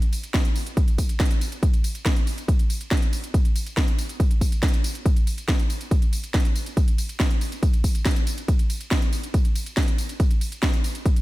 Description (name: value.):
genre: techno.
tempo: 140 BPM.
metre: 4/4.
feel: straight.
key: none.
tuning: none.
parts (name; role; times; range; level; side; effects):
techno drum kit; drums; 0.0-11.2 s; hi-hat, ride cymbal, snare drum, tambourine; -29 LUFS; equal; sidechain pumping on hats, small room ambience, sidechain pumping on cymbals, sidechain pumping on perc.
electronic kick drum; drums; 0.3-11.1 s; none; -20 LUFS; equal; small room ambience.
room: little or no reverb.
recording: none.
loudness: -20 LUFS.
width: side -18 dB against mid.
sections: 0.0-11.2 A section.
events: none.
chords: none.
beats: 0.34 0.77 1.20 | 1.63 2.06 2.48 2.91 | 3.34 3.77 4.20 4.63 | 5.06 5.48 5.91 6.34 | 6.77 7.20 7.63 8.06 | 8.48 8.91 9.34 9.77 | 10.20 10.63 11.06.